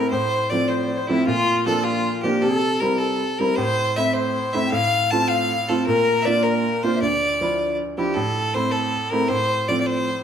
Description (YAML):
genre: celtic folk, Celtic jig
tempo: 105 BPM (dotted quarters)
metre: 6/8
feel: straight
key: unclear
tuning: A4 = 438 Hz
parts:
  - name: clear fiddle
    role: melody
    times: 0.0-10.2 s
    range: E4 to A5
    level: -22 LUFS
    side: equal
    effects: none
  - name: bright wooden flute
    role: second line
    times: 0.0-7.8 s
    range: E4 to A5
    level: -26 LUFS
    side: left 5 dB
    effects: none
  - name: clear upright piano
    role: accompaniment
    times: 0.0-10.2 s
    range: D2 to F4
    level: -22 LUFS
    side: right 2 dB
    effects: none
room: wet large studio reverb, RT60 1.1 s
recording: band playing live in one room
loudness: -18 LUFS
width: side -8 dB against mid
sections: 0.0-8.2 A section; 8.2-10.2 A section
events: none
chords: 0.1 F/A; 1.3 Bb; 2.4 C; 3.6 Am; 4.7 F/A; 5.9 Bb; 7.0 Dmadd9; 8.2 Am; 9.3 F/A